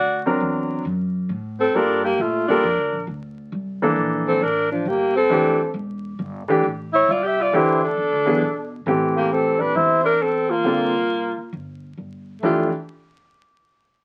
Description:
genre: jazz, small-group swing and bop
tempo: 135 BPM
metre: 4/4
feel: swing 66% on 8ths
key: F major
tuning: A4 = 435 Hz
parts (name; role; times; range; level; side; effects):
- dark alto saxophone; melody; 0.0-12.7 s; D4 to E5; -23 LUFS; equal; none
- warm alto saxophone; second line; 0.0-12.7 s; F3 to G4; -25 LUFS; equal; none
- upright bass; bass; 0.0-12.7 s; E1 to B2; -33 LUFS; equal; none
- warm baby grand piano; accompaniment; 0.3-12.7 s; D3 to Bb4; -23 LUFS; equal; none
room: moderate studio reverb, RT60 0.5 s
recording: very old 78 rpm record, vinyl crackle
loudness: -21 LUFS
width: mono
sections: 0.0-8.9 A section; 8.9-12.4 B section; 12.4-14.0 C section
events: none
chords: 0.0 D7b13; 1.7 Gm9; 3.5 C13; 5.3 Fmaj13 (rootless); 8.0 E7; 8.9 Am7; 10.6 C9sus4; 12.4 Fmaj13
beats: 0.41 0.85 1.29 | 1.74 2.19 2.63 3.08 | 3.52 3.97 4.41 4.86 | 5.30 5.75 6.19 6.64 | 7.08 7.53 7.97 8.42 | 8.86 9.31 9.76 10.20 | 10.64 11.09 11.54 11.98 | 12.43

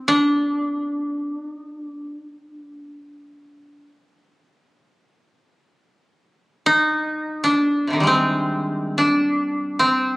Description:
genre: japanese traditional, Japanese chamber music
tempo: free time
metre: none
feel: none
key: C hirajoshi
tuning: A4 = 435 Hz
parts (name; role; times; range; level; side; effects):
- koto; solo; 0.0-10.2 s; C3 to Eb4; -19 LUFS; equal; none
room: wet recital hall reverb, RT60 1.6 s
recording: recorded on a phone in the room, studio ambience, compression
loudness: -18 LUFS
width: side -23 dB against mid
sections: 0.0-10.2 A section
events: none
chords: none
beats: free time

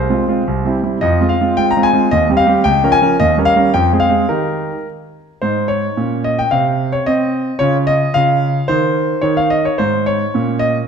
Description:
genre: classical-period piano sonatina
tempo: 109 BPM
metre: 2/4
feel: straight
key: Ab major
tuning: A4 = 440 Hz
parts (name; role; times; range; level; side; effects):
- clear concert grand piano; solo; 0.0-10.8 s; C2 to Bb5; -13 LUFS; equal; none
room: wet recital hall reverb, RT60 1.5 s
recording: none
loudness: -13 LUFS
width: side -6 dB against mid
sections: 0.0-5.4 A section; 5.4-10.9 B section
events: none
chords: 0.5 C; 1.0 Fm; 2.1 Cm/Eb; 2.7 Bbm7/Db; 3.2 Eb7; 3.7 Fm; 4.3 Eb; 5.4 Ab; 6.0 Bbmadd11; 6.5 N.C.; 7.6 Db; 8.7 N.C.; 9.8 Ab; 10.3 Bbmadd11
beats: 0.46 | 1.01 1.57 | 2.11 2.65 | 3.19 3.73 | 4.29 4.86 | 5.42 5.97 | 6.52 7.06 | 7.60 8.14 | 8.69 9.24 | 9.79 10.34

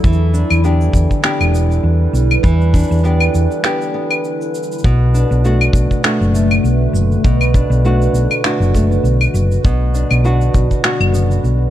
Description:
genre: folktronica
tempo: 100 BPM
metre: 4/4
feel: swing 56% on 16ths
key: B minor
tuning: A4 = 437 Hz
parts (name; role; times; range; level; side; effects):
- warbly tape-like pad; sustained chords; 0.0-11.7 s; D3 to B4; -21 LUFS; equal; chorus, built-in reverb, phaser
- nylon-string guitar; arpeggios; 0.0-11.7 s; B2 to G4; -20 LUFS; equal; digital delay
- hollow-body short-scale fingered electric bass; bass; 0.0-11.7 s; E1 to E2; -14 LUFS; equal; none
- electronic shaker, claves and finger snaps; drums; 0.0-11.6 s; none; -19 LUFS; left 1 dB; none
- kick drum; drums; 0.0-10.8 s; none; -14 LUFS; equal; none
room: small room ambience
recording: dark, warm production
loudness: -12 LUFS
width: side -12 dB against mid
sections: 0.0-11.7 A section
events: break 3.6-4.8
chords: 0.0 Em7; 4.8 Bm7; 9.6 Gmaj7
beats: | 0.04 0.64 1.24 1.84 | 2.44 3.04 3.64 4.24 | 4.84 5.44 6.04 6.64 | 7.24 7.84 8.44 9.04 | 9.64 10.24 10.84 11.44

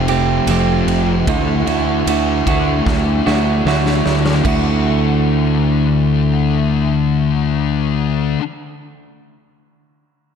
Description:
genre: rock, shoegaze and dream pop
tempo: 76 BPM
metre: 4/4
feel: straight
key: D major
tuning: A4 = 440 Hz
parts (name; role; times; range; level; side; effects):
- clean electric guitar; riff; 0.0-8.4 s; D3 to G4; -19 LUFS; right 12 dB; reverse reverb
- thick fuzz guitar; riff; 0.0-8.4 s; F2 to D4; -18 LUFS; left 9 dB; distortion, analog chorus
- growling fingered electric bass; bass; 0.0-8.4 s; F1 to D2; -19 LUFS; equal; overdrive
- big rock drum kit; drums; 0.1-4.6 s; crash cymbal, kick drum, ride cymbal, snare drum; -22 LUFS; equal; none
room: light reverb, small room ambience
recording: dark, warm production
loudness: -13 LUFS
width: side -7 dB against mid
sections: 0.0-4.4 A section; 4.4-7.6 B section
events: drum fill 2.9-4.4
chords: 0.0 Fadd9; 1.3 Dadd9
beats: 0.48 | 1.27 2.06 2.86 3.65 | 4.45 5.24 6.03 6.83

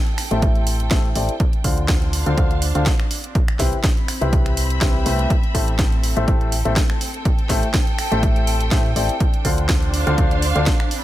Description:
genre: piano house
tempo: 123 BPM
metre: 4/4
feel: swing 54% on 16ths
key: A minor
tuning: A4 = 440 Hz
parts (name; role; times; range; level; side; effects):
- warm studio string section; texture; 0.0-11.0 s; C4 to B5; -29 LUFS; right 2 dB; sidechain pumping
- garage drum kit; drums; 0.1-11.0 s; finger snaps, hi-hat, snare drum; -26 LUFS; right 1 dB; none
- clear grand piano; riff; 0.3-10.7 s; C3 to F5; -24 LUFS; left 2 dB; sidechain pumping, low-pass filter, ping-pong delay
- solid FM bass; bass; 0.3-10.7 s; A1 to A2; -21 LUFS; equal; sidechain pumping
- electronic kick drum; drums; 0.4-10.8 s; none; -19 LUFS; equal; none
room: little or no reverb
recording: none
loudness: -16 LUFS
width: side -14 dB against mid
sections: 0.0-11.0 A section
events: fade-in on string section 0.0-11.0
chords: 0.0 Am7; 1.4 Dm7; 3.1 Cmaj7; 5.3 Am7; 9.2 Dm7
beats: 0.42 0.91 | 1.40 1.89 2.38 2.86 | 3.35 3.84 4.33 4.82 | 5.30 5.79 6.28 6.77 | 7.25 7.74 8.23 8.72 | 9.21 9.69 10.18 10.67

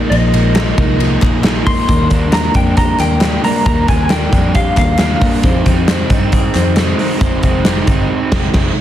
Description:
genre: jangly indie pop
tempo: 135 BPM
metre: 4/4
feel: straight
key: Eb major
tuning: A4 = 440 Hz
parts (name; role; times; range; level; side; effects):
- raw garage guitar; accompaniment; 0.0-8.7 s; F2 to Eb4; -20 LUFS; right 4 dB; overdrive
- twelve-string electric guitar; arpeggios; 0.0-8.6 s; F3 to Ab4; -19 LUFS; left 4 dB; none
- electric guitar through a small old amp; melody; 0.1-5.3 s; Eb5 to C6; -19 LUFS; equal; tremolo, plate reverb, analog delay
- vintage muted picked electric bass; bass; 0.1-8.7 s; F1 to G2; -17 LUFS; equal; none
- big rock drum kit; drums; 0.1-8.7 s; crash cymbal, hi-hat, kick drum, ride cymbal, snare drum; -14 LUFS; equal; none
- group handclap; percussion; 0.6-7.8 s; none; -28 LUFS; left 8 dB; none
room: light reverb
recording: dense, heavily limited modern master, vinyl crackle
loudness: -11 LUFS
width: side -12 dB against mid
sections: 0.0-1.9 A section; 1.9-8.8 B section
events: band accent 8.1-8.8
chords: 0.0 Bb7sus4; 1.9 Ebmaj7; 5.4 Fm7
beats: | 0.12 0.56 1.00 1.45 | 1.89 2.33 2.77 3.22 | 3.66 4.10 4.55 4.99 | 5.43 5.88 6.32 6.77 | 7.21 7.66 8.10 8.55

